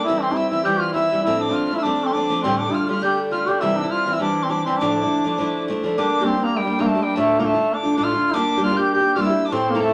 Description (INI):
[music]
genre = celtic folk, Celtic reel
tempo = 203 BPM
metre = 4/4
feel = swing 54% on 8ths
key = unclear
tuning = A4 = 440 Hz
[part]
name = mellow duduk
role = melody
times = 0.0-9.9 s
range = G3 to G4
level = -23 LUFS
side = equal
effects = none
[part]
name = bright reedy tin whistle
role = second line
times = 0.0-9.9 s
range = G5 to G6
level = -29 LUFS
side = equal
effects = none
[part]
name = picked steel-string acoustic guitar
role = accompaniment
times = 0.0-9.9 s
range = D2 to A4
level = -25 LUFS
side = equal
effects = none
[sound]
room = moderate large studio reverb, RT60 0.9 s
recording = none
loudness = -20 LUFS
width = mono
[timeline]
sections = 0.0-6.0 A section; 6.0-9.9 B section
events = none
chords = 0.1 C; 1.3 Dm7; 2.4 Gsus2/D; 3.6 C; 4.8 Dmadd9; 6.0 Gm; 7.2 Dm; 8.3 Gm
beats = | 0.08 0.37 0.67 0.96 | 1.26 1.56 1.85 2.15 | 2.44 2.74 3.03 3.33 | 3.62 3.92 4.21 4.51 | 4.80 5.10 5.39 5.69 | 5.99 6.28 6.58 6.87 | 7.17 7.46 7.76 8.05 | 8.35 8.64 8.94 9.23 | 9.53 9.82